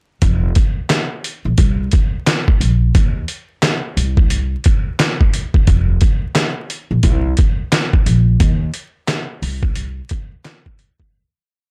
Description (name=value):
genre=hip hop, boom-bap hip-hop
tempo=88 BPM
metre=4/4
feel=swing 62% on 16ths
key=unclear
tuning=A4 = 441 Hz
part: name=upright bass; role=bass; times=0.2-10.0 s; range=F1 to Eb2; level=-18 LUFS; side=equal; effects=none
part: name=trip hop sampler-style drum kit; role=drums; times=0.2-11.1 s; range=handclaps, hi-hat, kick drum, snare drum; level=-17 LUFS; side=equal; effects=none
room=little or no reverb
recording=dry, gritty hardware recording, vinyl crackle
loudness=-16 LUFS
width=mono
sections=0.2-11.1 verse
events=fade-out 8.4-11.1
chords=none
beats=| 0.22 0.90 1.58 2.26 | 2.94 3.63 4.31 4.99 | 5.67 6.35 7.04 7.72 | 8.40 9.08 9.76 10.45